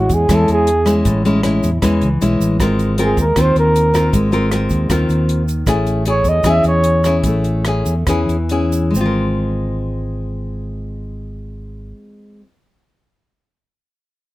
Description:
bossa nova; 132-157 BPM; 4/4; straight; A4 = 440 Hz
breathy flugelhorn; melody; 0.0-7.2 s; Gb4 to E5; -16 LUFS; right 1 dB
nylon-string guitar; accompaniment; 0.0-12.6 s; A2 to Bb4; -18 LUFS; left 2 dB
fingered electric bass; bass; 0.0-11.9 s; Ab1 to E2; -18 LUFS; equal
compact cocktail drum kit; drums; 0.1-8.8 s; hi-hat, kick drum, rim click; -22 LUFS; equal
egg shaker; percussion; 0.1-9.1 s; -32 LUFS; right 4 dB
light reverb; close, detailed microphones; -13 LUFS; side -17 dB against mid
0.0-8.9 A section; 8.9-12.6 B section
flugelhorn solo 0.0-8.9; slowing down 5.7-8.9
0.0 Amaj7; 2.6 Ab69; 5.7 Amaj7; 8.9 Ab69
0.30 0.68 | 1.06 1.45 1.83 2.21 | 2.60 2.98 3.36 3.75 | 4.13 4.52 4.90 5.29 | 5.67 6.06 6.45 6.84 | 7.24 7.65 8.07 8.50 | 8.95 9.40 9.86 10.31 | 10.76 11.21 11.67 12.12

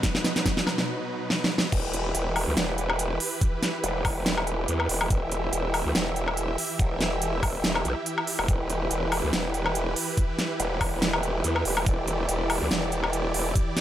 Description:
heavy wobble dubstep; 142 BPM; 4/4; swing 55% on 16ths, half-time; E minor; A4 = 439 Hz
supersaw chords; sustained chords; 0.0-13.8 s; B2 to E5; -31 LUFS; right 1 dB; vintage 12-bit sampler grit, sidechain pumping
big-room dance drum kit; drums; 0.0-13.8 s; crash cymbal, hi-hat, snare drum, woodblock; -27 LUFS; equal
electronic kick drum; drums; 0.0-13.6 s; -26 LUFS; equal
growl bass; bass; 1.7-13.5 s; E1 to E2; -27 LUFS; equal; chorus, overdrive
little or no reverb; -24 LUFS; side -12 dB against mid
0.0-1.7 A section; 1.7-13.8 B section
build-up 0.0-1.7; drum fill 0.0-0.9, 1.3-1.7; break 0.9-1.7; drop 1.7-13.8
0.0 B; 1.7 Em
| 0.03 0.46 0.88 1.30 | 1.72 2.15 2.57 2.99 | 3.42 3.84 4.26 4.68 | 5.11 5.53 5.95 6.37 | 6.79 7.22 7.64 8.06 | 8.48 8.91 9.33 9.75 | 10.18 10.60 11.02 11.44 | 11.87 12.29 12.71 13.13 | 13.55

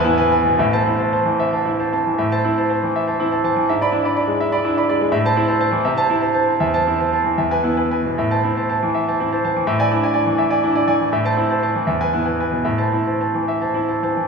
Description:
classical, romantic character piece for solo piano; 72-84 BPM (dotted quarters); 6/8; rubato; A minor; A4 = 438 Hz
bright grand piano; solo; 0.0-14.3 s; A1 to B5; -16 LUFS; right 1 dB
wet church reverb, RT60 3.3 s; recorded in a church or concert hall, small room ambience; -16 LUFS; side -5 dB against mid
0.0-2.2 A section; 2.2-14.3 B section
0.0 E; 0.6 Am; 3.7 E7/G#; 5.1 Am; 5.9 Am/C; 6.6 Am/E; 7.4 E; 8.2 Am; 9.7 E7/A; 11.1 Am; 11.9 E; 12.6 Am
| 0.58 1.38 | 2.18 2.94 | 3.67 4.40 | 5.13 5.85 | 6.61 7.38 | 8.16 8.93 | 9.66 10.38 | 11.12 11.86 | 12.64 13.47

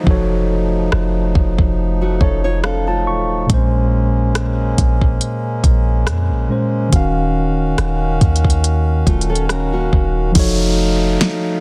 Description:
contemporary R&B; 70 BPM; 4/4; swing 54% on 16ths; A4 = 440 Hz
mellow tine electric piano; accompaniment; 0.0-11.6 s; Bb2 to Db6; -22 LUFS; equal
hand-pumped harmonium; sustained chords; 0.0-11.6 s; Eb3 to F5; -27 LUFS; equal
downlifter; sound effects; 0.0-3.5, 10.4-11.6 s; -30 LUFS; equal
clean 808-style bass; bass; 0.1-11.2 s; Eb1 to F2; -20 LUFS; equal
smooth R&B drum kit; drums; 0.1-11.4 s; hi-hat, kick drum, rim click, snare drum; -18 LUFS; equal; soft clipping on snare
nylon-string guitar; arpeggios; 2.0-3.5, 9.1-10.3 s; A3 to Db5; -25 LUFS; equal; digital delay
little or no reverb; dense, heavily limited modern master; -16 LUFS; mono
0.0-10.4 A section; 10.4-11.6 B section
tine electric piano fill 1.8-3.5
0.0 F7b9b13; 3.5 Bbm9; 6.9 Ebm9; 10.4 F7b9b13
| 0.07 0.93 1.78 2.64 | 3.50 4.35 5.21 6.07 | 6.92 7.78 8.64 9.50 | 10.35 11.21

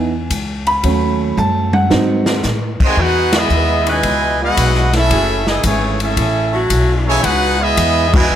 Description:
jazz, big band swing; 113 BPM; 4/4; swing 68% on 8ths; C# minor; A4 = 440 Hz
clear baby grand piano; accompaniment; 0.0-2.4 s; F#3 to B5; -16 LUFS; right 2 dB
upright bass; bass; 0.0-8.4 s; F#1 to A2; -18 LUFS; left 1 dB
swinging big-band drum kit; drums; 0.3-8.2 s; crash cymbal, hi-hat, kick drum, ride cymbal, snare drum, toms; -20 LUFS; equal
bright trumpet section; melody; 2.8-8.4 s; A3 to G#5; -16 LUFS; equal
brilliant trombone section; second line; 2.8-8.4 s; B2 to F#4; -20 LUFS; right 2 dB
clear saxophone section; sustained chords; 3.9-8.2 s; E3 to B4; -21 LUFS; left 1 dB
light reverb; -13 LUFS; side -10 dB against mid
0.0-3.0 A section; 3.0-8.4 B section
grand piano solo 0.0-3.0; drum fill 1.4-2.4; band accent 3.2, 8.0
0.0 C#m7; 0.8 D#m7b5; 1.9 G#7; 3.0 C#m9; 5.1 F#m9; 7.2 C#m9
0.31 | 0.85 1.38 1.91 2.44 | 2.98 3.51 4.04 4.57 | 5.11 5.64 6.17 6.71 | 7.24 7.77 8.30

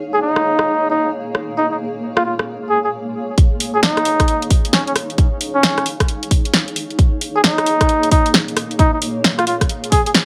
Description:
UK garage, two-step garage; 133 BPM; 4/4; swing 64% on 16ths; A4 = 441 Hz
granular cloud pad; texture; 0.0-10.2 s; Bb3 to F5; -28 LUFS; equal; built-in reverb, sidechain pumping
trumpet with bucket mute; melody; 0.1-10.1 s; Db4 to Ab4; -20 LUFS; equal; delay
house drum kit; drums; 0.4-10.2 s; hi-hat, rim click, snare drum; -19 LUFS; equal; small room ambience
electronic kick drum; drums; 3.4-10.0 s; -17 LUFS; equal; small room ambience
light reverb; -17 LUFS; mono
0.0-3.4 A section; 3.4-10.2 B section
build-up 3.4-10.2
0.0 Bbm7
0.22 0.67 1.12 | 1.57 2.02 2.48 2.93 | 3.38 3.83 4.28 4.73 | 5.18 5.63 6.08 6.54 | 6.99 7.44 7.89 8.34 | 8.79 9.24 9.69 10.14

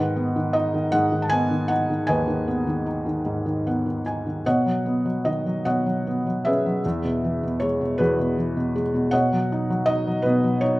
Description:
classical, lyrical solo piano; 51 BPM (dotted quarters); 6/8; uneven beats, rubato; A4 = 441 Hz
felt-muted upright piano; solo; 0.0-10.8 s; D#2 to A5; -20 LUFS; equal
moderate recital hall reverb, RT60 1.6 s; close, detailed microphones; -21 LUFS; side -19 dB against mid
0.0-10.8 A section
felt piano fill 3.3-4.5
0.0 G#m7; 4.5 Badd9; 6.8 Eadd9; 9.1 Badd9
0.93 | 2.08 3.25 | 4.45 5.66 | 6.84 7.99 | 9.13 10.25

